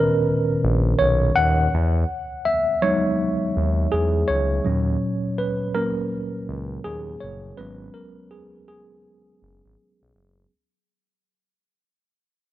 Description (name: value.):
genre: lo-fi hip hop.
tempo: 82 BPM.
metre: 4/4.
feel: swing 64% on 16ths.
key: unclear.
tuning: A4 = 440 Hz.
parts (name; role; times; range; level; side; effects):
tine electric piano; accompaniment; 0.0-10.5 s; A#2 to F#5; -21 LUFS; equal; medium stereo tremolo.
smooth synth bass; bass; 0.6-10.5 s; F#1 to E2; -22 LUFS; left 1 dB; none.
room: light reverb, small room ambience.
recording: cassette tape.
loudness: -19 LUFS.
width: side -14 dB against mid.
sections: 0.0-10.5 A section.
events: fade-out 0.0-10.5; tine electric piano solo 0.0-10.5.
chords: 0.0 Bmaj9; 1.7 Emaj9; 4.6 D#m7; 7.6 G#m7.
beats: 0.26 0.99 | 1.72 2.45 3.19 3.92 | 4.65 5.38 6.11 6.84 | 7.58 8.31 9.04 9.77.